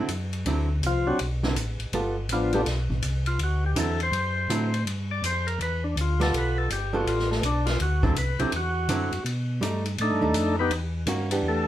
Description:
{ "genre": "soul jazz organ trio", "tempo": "164 BPM", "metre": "4/4", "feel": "swing 64% on 8ths", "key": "D mixolydian", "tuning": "A4 = 440 Hz", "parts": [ { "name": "archtop guitar, miked and amplified", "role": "accompaniment", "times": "0.0-11.6 s", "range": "D3 to A4", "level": "-28 LUFS", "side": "right 2 dB", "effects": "none" }, { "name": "mellow tonewheel organ", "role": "bass", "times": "0.0-11.7 s", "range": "G1 to B2", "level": "-27 LUFS", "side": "equal", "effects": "slow rotary speaker" }, { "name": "swinging big-band drum kit", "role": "drums", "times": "0.1-11.4 s", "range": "hi-hat, kick drum, ride cymbal, snare drum", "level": "-33 LUFS", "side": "left 1 dB", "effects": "none" }, { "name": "percussive tonewheel organ", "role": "melody", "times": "0.9-11.7 s", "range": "F3 to D5", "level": "-27 LUFS", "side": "left 1 dB", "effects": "slow rotary speaker, overdrive" } ], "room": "wet studio ambience, RT60 0.5 s", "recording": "band playing live in one room", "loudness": "-23 LUFS", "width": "side -12 dB against mid", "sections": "0.0-11.7 A section", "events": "tonewheel organ solo 0.0-11.7", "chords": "0.0 D9; 1.9 G9; 3.4 D9; 4.9 G9; 7.8 D9; 9.3 B7alt; 10.7 Em7" }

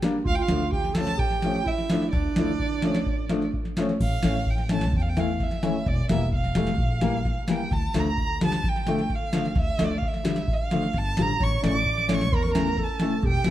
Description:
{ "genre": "klezmer", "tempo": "129 BPM", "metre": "4/4", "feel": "straight", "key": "D harmonic minor", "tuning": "A4 = 441 Hz", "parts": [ { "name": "dark upright piano", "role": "accompaniment", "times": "0.0-13.5 s", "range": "C#3 to E4", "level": "-28 LUFS", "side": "left 2 dB", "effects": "none" }, { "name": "booming analog drum machine", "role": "drums", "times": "0.0-13.5 s", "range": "crash cymbal, kick drum, snare drum", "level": "-27 LUFS", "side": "equal", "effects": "none" }, { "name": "mellow clarinet", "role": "second line", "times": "0.2-3.5, 11.4-13.5 s", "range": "D4 to D5", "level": "-31 LUFS", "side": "right 5 dB", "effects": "none" }, { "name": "rich violin", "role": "melody", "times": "0.3-13.5 s", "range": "D5 to D6", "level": "-30 LUFS", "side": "right 3 dB", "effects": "none" }, { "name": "upright bass", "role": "bass", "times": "0.3-13.5 s", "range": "E1 to E2", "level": "-29 LUFS", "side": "equal", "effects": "none" } ], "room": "light reverb", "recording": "dark, warm production", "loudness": "-22 LUFS", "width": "side -13 dB against mid", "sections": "0.0-4.0 A section; 4.0-13.5 A section", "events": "speeding up 0.0-13.5", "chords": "0.2 Dm; 4.0 A; 5.9 Edim; 7.7 Dm; 11.4 A" }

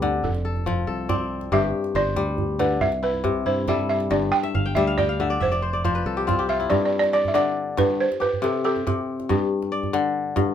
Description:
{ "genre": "west african traditional, West African string and xylophone music", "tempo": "93 BPM (dotted quarters)", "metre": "12/8", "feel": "straight", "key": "G mixolydian", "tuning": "A4 = 440 Hz", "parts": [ { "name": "balafon", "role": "melody", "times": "0.0-10.5 s", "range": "G4 to G5", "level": "-24 LUFS", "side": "right 3 dB", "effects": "none" }, { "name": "kora", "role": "arpeggios", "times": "0.0-10.5 s", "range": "G2 to G5", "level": "-24 LUFS", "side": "left 5 dB", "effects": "none" }, { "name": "fingered electric bass", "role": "bass", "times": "0.0-6.7 s", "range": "F1 to G2", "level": "-28 LUFS", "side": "right 1 dB", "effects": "none" }, { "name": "djembe", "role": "percussion", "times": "0.0-10.5 s", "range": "none", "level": "-29 LUFS", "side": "right 5 dB", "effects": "none" } ], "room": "light reverb", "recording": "minimal, uncompressed stereo recording", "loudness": "-20 LUFS", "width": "side -9 dB against mid", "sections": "0.0-6.7 A section; 6.7-10.5 B section", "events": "kora fill 4.4-6.7", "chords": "0.2 F; 1.5 G5; 2.8 C; 4.1 G5; 5.4 F5; 6.7 G5; 8.0 C5; 9.3 G5" }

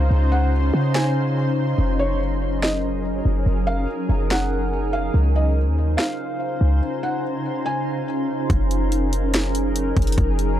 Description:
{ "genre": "hip hop, atmospheric cloud-rap", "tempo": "143 BPM", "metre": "4/4", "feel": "half-time", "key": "unclear", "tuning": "A4 = 438 Hz", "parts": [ { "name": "felt-muted upright piano", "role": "melody", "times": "0.0-8.1 s", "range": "Db5 to Ab5", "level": "-29 LUFS", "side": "equal", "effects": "ping-pong delay" }, { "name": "shimmering ambient pad", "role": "sustained chords", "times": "0.0-10.6 s", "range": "Db3 to C5", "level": "-24 LUFS", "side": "equal", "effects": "chorus, built-in reverb" }, { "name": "clean 808-style bass", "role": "bass", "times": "0.0-10.6 s", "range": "Gb1 to Db3", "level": "-20 LUFS", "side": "equal", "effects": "none" }, { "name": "trap drum kit", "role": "drums", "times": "1.0-10.5 s", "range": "hi-hat, kick drum, snare drum", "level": "-22 LUFS", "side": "equal", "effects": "overdrive" } ], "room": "light reverb", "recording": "dark, warm production", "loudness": "-19 LUFS", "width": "side -12 dB against mid", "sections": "0.0-8.5 A section; 8.5-10.6 B section", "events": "break 6.8-8.5", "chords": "0.0 Dbmaj7; 1.8 Gb6; 5.1 Dbmaj7; 8.5 Gb6" }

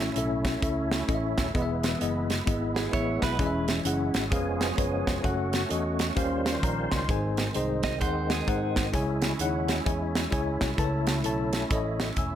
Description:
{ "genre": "uptempo gospel", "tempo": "130 BPM", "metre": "4/4", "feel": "swing 63% on 8ths", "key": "C# minor", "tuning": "A4 = 439 Hz", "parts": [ { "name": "bell-like tine electric piano", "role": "accompaniment", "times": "0.0-12.4 s", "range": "G#2 to E6", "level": "-30 LUFS", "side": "left 3 dB", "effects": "fast stereo tremolo" }, { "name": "bright tonewheel organ", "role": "sustained chords", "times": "0.0-12.4 s", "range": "D#3 to B#4", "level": "-33 LUFS", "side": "right 3 dB", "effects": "fast rotary speaker, chorus vibrato" }, { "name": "fingered electric bass", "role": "bass", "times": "0.0-12.4 s", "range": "D#1 to G#2", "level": "-32 LUFS", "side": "equal", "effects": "none" }, { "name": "modern studio drum kit", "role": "drums", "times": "0.2-12.3 s", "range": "hi-hat, kick drum, snare drum", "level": "-29 LUFS", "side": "right 1 dB", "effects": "none" }, { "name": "clean electric guitar", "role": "second line", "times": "2.8-3.7, 7.8-8.9 s", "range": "G#4 to D#5", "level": "-34 LUFS", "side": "right 6 dB", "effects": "spring reverb" } ], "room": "moderate large studio reverb, RT60 1.1 s, small room reverb", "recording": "none", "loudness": "-25 LUFS", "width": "side -10 dB against mid", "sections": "0.0-12.4 A section", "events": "none", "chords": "0.0 A; 1.5 E; 3.4 C#m/E; 4.3 C#7/E#; 5.2 F#m; 6.2 D#13; 7.1 G#; 8.9 C#m; 10.8 A" }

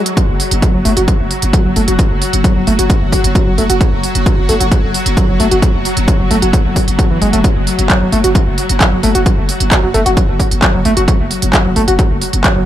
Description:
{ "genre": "driving peak-time techno", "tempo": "132 BPM", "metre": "4/4", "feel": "straight", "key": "unclear", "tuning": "A4 = 441 Hz", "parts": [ { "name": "swarming drone", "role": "drone", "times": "0.0-12.7 s", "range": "F#3 to F#4", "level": "-20 LUFS", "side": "left 1 dB", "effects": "built-in reverb, sidechain pumping" }, { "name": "techno drum kit", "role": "drums", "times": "0.1-12.5 s", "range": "handclaps, hi-hat", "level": "-17 LUFS", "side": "right 1 dB", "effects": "sidechain pumping on hats" }, { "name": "overdriven synth lead", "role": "riff", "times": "0.2-12.6 s", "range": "E3 to F#4", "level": "-17 LUFS", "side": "equal", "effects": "wide subtle chorus, sidechain pumping, dub echo" }, { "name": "electronic kick drum", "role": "drums", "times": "0.2-12.5 s", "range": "none", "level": "-13 LUFS", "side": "equal", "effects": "none" }, { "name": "growling 808-style bass", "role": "bass", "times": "0.3-12.7 s", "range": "F#1", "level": "-18 LUFS", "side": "equal", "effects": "overdrive, sidechain pumping, low-pass filter" } ], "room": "digital ambience", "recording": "none", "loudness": "-10 LUFS", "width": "side -12 dB against mid", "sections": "0.0-12.7 A section", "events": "break 0.0; filter sweep on analog synth lead 0.0-12.7", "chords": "none" }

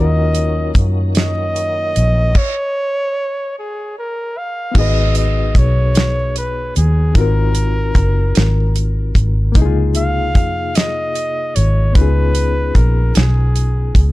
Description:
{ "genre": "slow six-eight R&B", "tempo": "50 BPM (dotted quarters)", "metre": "6/8", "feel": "straight", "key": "unclear", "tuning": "A4 = 442 Hz", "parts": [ { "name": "warm flugelhorn", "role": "melody", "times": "0.0-14.1 s", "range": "Ab4 to F5", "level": "-21 LUFS", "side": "right 1 dB", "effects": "ping-pong delay" }, { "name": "barky reed electric piano", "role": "accompaniment", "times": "0.0-14.1 s", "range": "C3 to Cb5", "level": "-24 LUFS", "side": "left 8 dB", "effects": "overdrive, tremolo" }, { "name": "tonewheel organ", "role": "sustained chords", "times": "0.0-2.3 s", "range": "Eb3 to Db4", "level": "-27 LUFS", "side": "right 1 dB", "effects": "overdrive, chorus vibrato, slow rotary speaker" }, { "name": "vintage muted fingered electric bass", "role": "bass", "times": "0.0-14.1 s", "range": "Gb1 to Gb2", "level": "-15 LUFS", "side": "equal", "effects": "none" }, { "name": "damped 70s drum kit", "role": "drums", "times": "0.3-14.1 s", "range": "crash cymbal, hi-hat, kick drum, snare drum", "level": "-14 LUFS", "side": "equal", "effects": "none" } ], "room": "little or no reverb", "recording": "dark, warm production", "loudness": "-13 LUFS", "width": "side -18 dB against mid", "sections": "0.0-4.8 A section; 4.8-14.1 A section", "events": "stop 2.4-4.8", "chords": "0.0 Ebm7; 4.8 Abm7; 7.2 Ab13; 9.6 Dbmaj13; 12.0 Db9" }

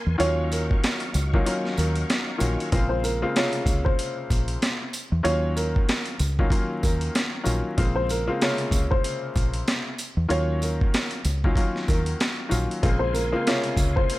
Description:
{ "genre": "hip hop, boom-bap hip-hop", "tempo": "95 BPM", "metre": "4/4", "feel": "swing 58% on 16ths", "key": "Bb minor", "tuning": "A4 = 441 Hz", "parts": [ { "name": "tonewheel organ", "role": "sustained chords", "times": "0.0-2.7, 12.8-14.2 s", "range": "Gb3 to Db6", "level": "-34 LUFS", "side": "equal", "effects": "chorus vibrato, fast rotary speaker, high-pass filter, low-pass filter" }, { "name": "deep dub fingered electric bass", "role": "bass", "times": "0.1-14.0 s", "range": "Bb1 to E2", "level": "-25 LUFS", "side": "equal", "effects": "none" }, { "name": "dark upright piano", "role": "melody", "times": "0.2-14.2 s", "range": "Bb4 to Db5", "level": "-29 LUFS", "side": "right 1 dB", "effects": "high-pass filter, low-pass filter, digital delay" }, { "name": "clear grand piano", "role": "accompaniment", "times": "0.2-14.2 s", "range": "C3 to F4", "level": "-28 LUFS", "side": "left 2 dB", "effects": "cassette tape, high-pass filter, low-pass filter" }, { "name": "boom bap sampler-style drum kit", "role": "drums", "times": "0.2-14.2 s", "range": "hi-hat, kick drum, snare drum", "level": "-25 LUFS", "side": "equal", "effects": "none" }, { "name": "tambourine", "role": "percussion", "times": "0.5-13.9 s", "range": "none", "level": "-38 LUFS", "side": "right 4 dB", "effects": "none" } ], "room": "light reverb", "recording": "vinyl crackle", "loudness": "-22 LUFS", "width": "side -17 dB against mid", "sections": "0.0-2.7 A section; 2.7-14.2 A section", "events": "kick muted 1.5-2.7", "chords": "0.2 Ebm9; 2.7 Bbm9; 5.3 Ebm9; 7.8 Bbm9; 10.3 Ebm9; 12.8 Bbm9" }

